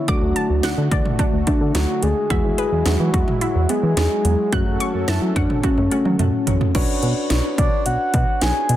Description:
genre	synth-pop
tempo	108 BPM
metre	4/4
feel	straight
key	B dorian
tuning	A4 = 440 Hz
part	soft octave-layered synth lead	melody	0.0-8.8 s	C#4 to G#5	-23 LUFS	left 1 dB	chorus, ping-pong delay
part	soft electric-piano-like synth keys	accompaniment	0.0-8.8 s	G#3 to C#5	-27 LUFS	left 2 dB	chorus
part	warm analog pad	sustained chords	0.0-6.7 s	D3 to A4	-29 LUFS	right 1 dB	chorus
part	warbly dusty pluck	arpeggios	0.1-6.6 s	D3 to F#6	-29 LUFS	right 1 dB	chorus, ping-pong delay
part	chorused synth bass	bass	0.1-8.8 s	A1 to F#3	-21 LUFS	equal	none
part	house drum kit	drums	0.1-8.8 s	cowbell, crash cymbal, hi-hat, kick drum, snare drum, toms	-21 LUFS	right 1 dB	overdrive
room	light reverb, digital ambience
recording	dense, heavily limited modern master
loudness	-17 LUFS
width	side -13 dB against mid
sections	0.0-6.7 A section; 6.7-8.8 B section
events	drum fill 5.6-6.7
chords	0.1 D; 2.3 Eadd9; 4.5 F#m; 6.7 Bmadd9

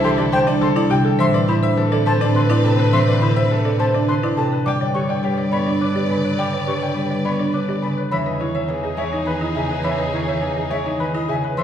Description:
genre	classical, minimalist pattern music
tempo	104 BPM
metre	3/4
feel	straight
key	unclear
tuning	A4 = 441 Hz
part	bright grand piano	melody	0.0-11.6 s	G4 to B5	-25 LUFS	left 6 dB	none
part	concert harp	accompaniment	0.0-11.6 s	C3 to B3	-22 LUFS	left 1 dB	none
part	rich studio string section	sustained chords	0.0-11.6 s	C4 to D5	-28 LUFS	left 1 dB	none
part	concert flute	arpeggios	0.0-11.6 s	E5 to D6	-28 LUFS	left 2 dB	none
part	folk marimba with medium mallets	arpeggios	0.0-11.6 s	D4 to D5	-23 LUFS	right 5 dB	none
part	clear double bass	bass	0.0-11.6 s	C2 to A2	-24 LUFS	right 1 dB	none
room	wet recital hall reverb, RT60 1.4 s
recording	recorded in a church or concert hall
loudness	-17 LUFS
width	side -9 dB against mid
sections	0.0-11.6 A section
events	none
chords	0.0 C6; 1.2 Amadd9; 4.7 G; 8.1 Emaj7

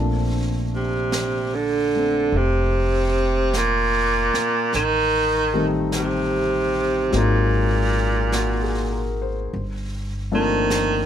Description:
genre	jazz ballad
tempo	50 BPM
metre	4/4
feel	swing 68% on 8ths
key	Bb major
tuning	A4 = 440 Hz
part	warm baby grand piano	accompaniment	0.0-11.1 s	Eb3 to C5	-26 LUFS	left 3 dB	none
part	upright bass	bass	0.0-11.1 s	F1 to Bb1	-24 LUFS	equal	none
part	clear baritone saxophone	melody	0.8-11.1 s	Bb2 to Eb3	-20 LUFS	right 2 dB	none
part	jazz brush drum kit	drums	1.1-11.1 s	brushed snare drum, hi-hat, snare drum	-33 LUFS	right 2 dB	none
room	light reverb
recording	none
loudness	-19 LUFS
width	side -9 dB against mid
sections	0.0-11.1 A section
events	none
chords	0.0 Bbmaj9; 4.7 Am7b5; 7.1 Ab9; 9.5 Gm11

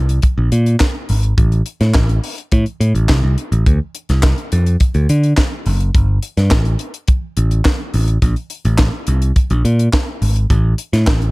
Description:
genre	disco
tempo	105 BPM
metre	4/4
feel	straight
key	unclear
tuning	A4 = 440 Hz
part	modern bright picked electric bass	bass	0.0-11.3 s	F#1 to D3	-13 LUFS	equal	none
part	tight funk drum kit	drums	0.1-11.3 s	handclaps, hi-hat, kick drum, snare drum	-16 LUFS	equal	gated reverb
room	little or no reverb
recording	none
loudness	-13 LUFS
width	side -24 dB against mid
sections	0.0-11.3 A section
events	none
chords	none

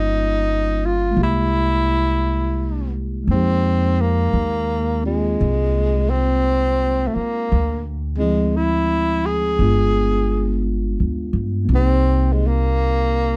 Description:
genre	jazz ballad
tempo	57 BPM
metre	4/4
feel	swing 66% on 8ths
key	unclear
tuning	A4 = 440 Hz
part	breathy tenor saxophone	melody	0.0-13.4 s	Ab3 to Ab4	-23 LUFS	equal	none
part	mellow tine electric piano	accompaniment	0.0-13.4 s	F3 to G4	-27 LUFS	equal	none
part	upright bass	bass	0.0-13.4 s	G1 to G2	-22 LUFS	equal	none
room	light reverb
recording	dark, warm production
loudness	-19 LUFS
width	mono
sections	0.0-13.4 A section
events	none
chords	0.0 Gm7b5; 1.2 C7b13; 3.3 Fm11; 7.5 Dm7b5; 9.6 G7b9; 11.7 Cm7

